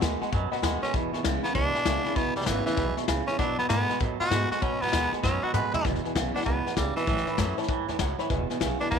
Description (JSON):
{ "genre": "rockabilly", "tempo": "196 BPM", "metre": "4/4", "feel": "swing 64% on 8ths", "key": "E major", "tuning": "A4 = 437 Hz", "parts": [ { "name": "dark upright piano", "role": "accompaniment", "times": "0.0-9.0 s", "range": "B4 to C#6", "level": "-36 LUFS", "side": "left 13 dB", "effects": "none" }, { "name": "picked steel-string acoustic guitar", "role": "accompaniment", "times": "0.0-9.0 s", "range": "E2 to F#4", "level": "-35 LUFS", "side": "left 13 dB", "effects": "none" }, { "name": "twangy electric guitar", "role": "riff", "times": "0.0-9.0 s", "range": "E2 to G#3", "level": "-31 LUFS", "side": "right 15 dB", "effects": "none" }, { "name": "upright bass", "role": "bass", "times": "0.0-9.0 s", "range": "E1 to A2", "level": "-32 LUFS", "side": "equal", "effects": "none" }, { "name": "soft brush drum kit", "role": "drums", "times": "0.0-9.0 s", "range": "hi-hat, kick drum, snare drum, toms", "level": "-31 LUFS", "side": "left 4 dB", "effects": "none" }, { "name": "raspy tenor saxophone", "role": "melody", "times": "0.8-9.0 s", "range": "E3 to B4", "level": "-28 LUFS", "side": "right 1 dB", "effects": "none" } ], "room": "small room ambience", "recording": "1960s-style stereo with parts hard left and right", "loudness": "-24 LUFS", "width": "side -7 dB against mid", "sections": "0.0-5.8 A section; 5.8-9.0 B section", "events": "drum fill 5.2-5.8", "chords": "0.0 B7; 0.9 E; 3.4 B7; 5.8 E; 7.1 A; 8.3 E" }